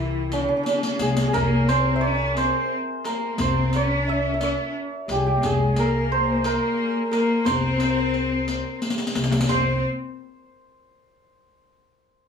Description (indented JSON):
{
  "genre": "Persian modal ensemble",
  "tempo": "59 BPM (dotted quarters)",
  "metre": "6/8",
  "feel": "straight",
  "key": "C dastgah homayun",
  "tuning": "A4 = 440 Hz",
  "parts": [
    { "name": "santur", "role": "melody", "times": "0.0-9.9 s", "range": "Db4+45c to E5", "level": "-25 LUFS", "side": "right 4 dB", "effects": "none" },
    { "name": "breathy mellow low ney", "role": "second line", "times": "0.0-9.8 s", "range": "D4-48c to E5", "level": "-30 LUFS", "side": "left 5 dB", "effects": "none" },
    { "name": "rich chamber cello section", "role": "second line", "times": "0.0-9.8 s", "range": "Db3+45c to Db4+45c", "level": "-26 LUFS", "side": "left 2 dB", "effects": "none" },
    { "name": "upright bass", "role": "bass", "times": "0.0-9.8 s", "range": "C2", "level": "-25 LUFS", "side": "left 1 dB", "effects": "none" },
    { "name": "riq", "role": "percussion", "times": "0.3-9.8 s", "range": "none", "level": "-28 LUFS", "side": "left 2 dB", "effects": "none" },
    { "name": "tombak", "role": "percussion", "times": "1.4-9.8 s", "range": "none", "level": "-35 LUFS", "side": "left 2 dB", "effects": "none" }
  ],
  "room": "light reverb",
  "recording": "small room ambience",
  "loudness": "-20 LUFS",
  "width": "side -6 dB against mid",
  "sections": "0.0-9.5 A section; 9.5-11.5 B section",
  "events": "drum fill 0.7-1.3, 8.8-9.5",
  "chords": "none"
}